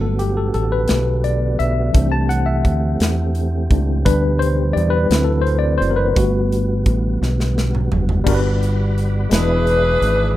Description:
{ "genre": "slow gospel", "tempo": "57 BPM (dotted quarters)", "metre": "6/8", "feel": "straight", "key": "G major", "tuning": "A4 = 441 Hz", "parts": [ { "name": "tine electric piano", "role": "accompaniment", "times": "0.0-10.4 s", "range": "G2 to A5", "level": "-21 LUFS", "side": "left 2 dB", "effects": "overdrive, fast stereo tremolo" }, { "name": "mellow tonewheel organ", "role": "sustained chords", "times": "0.0-10.4 s", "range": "B2 to B5", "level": "-26 LUFS", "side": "right 3 dB", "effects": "fast rotary speaker, chorus vibrato" }, { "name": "fingered electric bass", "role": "bass", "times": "0.0-10.3 s", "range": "E1 to E2", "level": "-18 LUFS", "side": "equal", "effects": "none" }, { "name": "modern studio drum kit", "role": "drums", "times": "0.2-10.2 s", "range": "crash cymbal, hi-hat, kick drum, snare drum, toms", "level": "-20 LUFS", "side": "equal", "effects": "none" }, { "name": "clear saxophone section", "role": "melody", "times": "9.3-10.3 s", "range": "D4 to B4", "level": "-17 LUFS", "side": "left 1 dB", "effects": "slapback echo" } ], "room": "light reverb", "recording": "rough home demo mix", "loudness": "-15 LUFS", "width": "side -14 dB against mid", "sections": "0.0-8.3 A section; 8.3-10.4 B section", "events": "tine electric piano solo 0.0-8.3; drum fill 7.2-8.3", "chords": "0.0 Gmaj7; 2.0 C6; 4.1 G/D; 5.1 D7; 6.2 Gmaj7; 9.3 E7" }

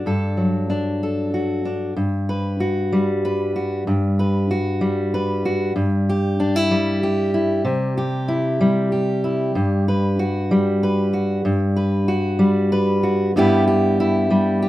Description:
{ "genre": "folk", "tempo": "95 BPM", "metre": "3/4", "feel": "straight", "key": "G major", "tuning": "A4 = 440 Hz", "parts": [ { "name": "fingerpicked steel-string acoustic guitar", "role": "solo", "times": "0.0-14.7 s", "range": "G2 to B4", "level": "-18 LUFS", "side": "equal", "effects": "none" } ], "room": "moderate studio reverb, RT60 0.6 s", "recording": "rough home demo mix", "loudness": "-18 LUFS", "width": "side -15 dB against mid", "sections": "0.0-2.0 A section; 2.0-14.7 B section", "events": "none", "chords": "0.0 D/G; 2.0 Gmaj7; 5.8 Em/G; 7.6 C; 9.5 Gmaj7; 13.3 Em/G" }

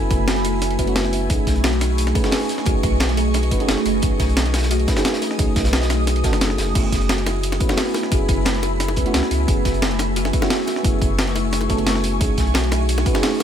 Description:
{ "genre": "liquid drum and bass", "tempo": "176 BPM", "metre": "4/4", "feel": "straight", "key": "F# dorian", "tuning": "A4 = 440 Hz", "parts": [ { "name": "mellow FM electric piano", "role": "accompaniment", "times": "0.0-13.4 s", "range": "A3 to G#5", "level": "-25 LUFS", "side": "right 2 dB", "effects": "chorus, ping-pong delay" }, { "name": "ethereal airy pad", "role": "sustained chords", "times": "0.0-13.4 s", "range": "A3 to D#6", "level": "-26 LUFS", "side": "equal", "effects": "ensemble chorus, built-in reverb, phaser, sidechain pumping" }, { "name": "buzzing kalimba", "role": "arpeggios", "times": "0.0-13.4 s", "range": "D#4 to B4", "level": "-27 LUFS", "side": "left 3 dB", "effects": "digital delay" }, { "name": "warm sub bass", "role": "bass", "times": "0.1-13.0 s", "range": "F#1 to C#2", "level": "-22 LUFS", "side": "equal", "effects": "none" }, { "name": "breakbeat sampler-style drum kit", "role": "drums", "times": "0.1-13.4 s", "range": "crash cymbal, hi-hat, snare drum", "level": "-24 LUFS", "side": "equal", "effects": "none" }, { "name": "crunchy breakbeat drum kit", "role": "drums", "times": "0.1-13.4 s", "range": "hi-hat, snare drum", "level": "-30 LUFS", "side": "equal", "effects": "high-pass filter on hats, high-pass filter on snare, high-pass filter on room" }, { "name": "electronic kick drum", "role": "drums", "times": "0.1-13.1 s", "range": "none", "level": "-22 LUFS", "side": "equal", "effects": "none" }, { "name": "bongos", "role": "percussion", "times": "7.3-13.4 s", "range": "none", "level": "-30 LUFS", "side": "left 6 dB", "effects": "none" } ], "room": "small room ambience", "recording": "none", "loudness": "-17 LUFS", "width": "side -9 dB against mid", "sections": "0.0-13.4 A section", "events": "none", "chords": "0.0 F#m11; 1.3 B13; 6.8 F#m11; 12.2 B13" }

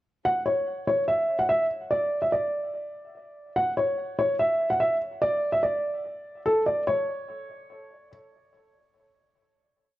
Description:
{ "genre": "hip hop, drill", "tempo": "145 BPM", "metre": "4/4", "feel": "half-time", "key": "unclear", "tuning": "A4 = 440 Hz", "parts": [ { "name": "dark baby grand piano", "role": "solo", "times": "0.3-8.1 s", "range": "A4 to F#5", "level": "-24 LUFS", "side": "equal", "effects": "none" } ], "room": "light reverb, studio reverb", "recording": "worn, warbling old tape, cassette tape, warbly pitch drift", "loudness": "-23 LUFS", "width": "side -15 dB against mid", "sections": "0.3-6.9 breakdown; 6.9-10.0 final note", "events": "none", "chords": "none" }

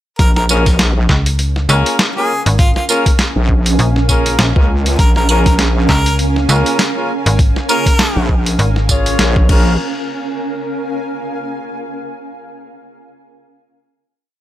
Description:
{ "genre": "glitch hop", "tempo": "100 BPM", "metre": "4/4", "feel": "swing 57% on 16ths", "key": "Bb minor pentatonic", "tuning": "A4 = 441 Hz", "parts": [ { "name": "clear harmonica", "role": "melody", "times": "0.2-8.3 s", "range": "F4 to Bb4", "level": "-20 LUFS", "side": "equal", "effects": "digital delay" }, { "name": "wobble bass", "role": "bass", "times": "0.2-9.8 s", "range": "Bb1 to Db2", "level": "-14 LUFS", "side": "equal", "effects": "chorus, tube saturation" }, { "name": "boom bap sampler-style drum kit", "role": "drums", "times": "0.2-9.6 s", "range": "crash cymbal, hi-hat, snare drum, tambourine", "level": "-18 LUFS", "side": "equal", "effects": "none" }, { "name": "electronic kick drum", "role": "drums", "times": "0.2-9.6 s", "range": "none", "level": "-14 LUFS", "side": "equal", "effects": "none" }, { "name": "granular cloud pad", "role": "texture", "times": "1.5-12.2 s", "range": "Db4 to Ab5", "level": "-22 LUFS", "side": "right 2 dB", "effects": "built-in reverb, sidechain pumping" }, { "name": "mellow horn section", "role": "stabs", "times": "0.5-9.7 s", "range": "Bb3 to Db5", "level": "-19 LUFS", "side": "left 2 dB", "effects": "sidechain pumping, digital delay" }, { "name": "slap-like FM bass", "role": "bass", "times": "1.1-9.2 s", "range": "Ab1 to Db2", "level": "-14 LUFS", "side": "equal", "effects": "none" } ], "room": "digital ambience", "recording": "none", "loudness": "-11 LUFS", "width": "side -13 dB against mid", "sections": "0.2-9.8 drop; 9.8-12.2 final chord", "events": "drop 0.2-9.8", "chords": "0.2 Bbm7" }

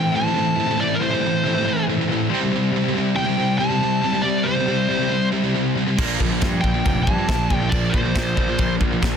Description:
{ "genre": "heavy metal", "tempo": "139 BPM", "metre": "4/4", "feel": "straight", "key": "unclear", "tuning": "A4 = 438 Hz", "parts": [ { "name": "high-gain lead guitar", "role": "melody", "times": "0.0-8.7 s", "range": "Bb4 to A5", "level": "-24 LUFS", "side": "equal", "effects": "distortion" }, { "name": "crunchy overdriven guitar", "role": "riff", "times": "0.0-9.2 s", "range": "A2 to E4", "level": "-26 LUFS", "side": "left 1 dB", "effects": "none" }, { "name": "heavy high-gain guitar", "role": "riff", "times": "0.0-9.2 s", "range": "A2 to C4", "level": "-24 LUFS", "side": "left 10 dB", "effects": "distortion" }, { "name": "high-gain distorted guitar", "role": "riff", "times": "0.0-9.2 s", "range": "A2 to C4", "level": "-24 LUFS", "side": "right 10 dB", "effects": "distortion" }, { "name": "fuzz picked electric bass", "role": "bass", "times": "6.0-9.2 s", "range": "F1 to G2", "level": "-25 LUFS", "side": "equal", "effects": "overdrive" }, { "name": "modern studio drum kit", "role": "drums", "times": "6.0-9.1 s", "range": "china cymbal, crash cymbal, kick drum, snare drum", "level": "-22 LUFS", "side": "equal", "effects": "none" } ], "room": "light reverb, small room ambience", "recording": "dense, heavily limited modern master", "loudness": "-18 LUFS", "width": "side -7 dB against mid", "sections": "0.0-9.2 A section", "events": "none", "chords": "0.0 Am; 2.3 C; 6.0 Bb" }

